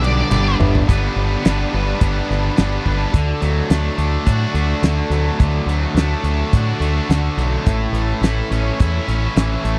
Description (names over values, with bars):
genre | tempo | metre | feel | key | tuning
classic rock | 106 BPM | 4/4 | straight | unclear | A4 = 440 Hz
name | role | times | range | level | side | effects
octave-fuzz lead guitar | melody | 0.0-0.6 s | D5 | -26 LUFS | equal | distortion, tape echo
bright tonewheel organ | sustained chords | 0.0-9.8 s | C#4 to D5 | -35 LUFS | equal | none
cranked stack guitar | riff | 0.0-9.8 s | G2 to B4 | -26 LUFS | equal | overdrive, spring reverb
distorted electric guitar | riff | 0.0-9.8 s | G2 to E4 | -27 LUFS | equal | overdrive
growling fingered electric bass | bass | 0.0-9.8 s | G1 to A2 | -21 LUFS | equal | overdrive
damped 70s drum kit | drums | 0.0-9.8 s | hi-hat, kick drum, ride cymbal, snare drum, toms | -18 LUFS | equal | none
bright reed electric piano | accompaniment | 0.6-0.8 s | G4 to E5 | -29 LUFS | equal | none
room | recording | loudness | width
little or no reverb | dry, close 1970s-style studio recording | -18 LUFS | mono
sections
0.9-3.1 A section; 3.1-9.8 B section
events
drum fill 0.3-0.9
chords
0.0 G; 3.1 D; 7.7 A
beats
0.31 | 0.87 1.44 2.00 2.56 | 3.13 3.69 4.26 4.83 | 5.39 5.96 6.53 7.09 | 7.66 8.23 8.80 9.37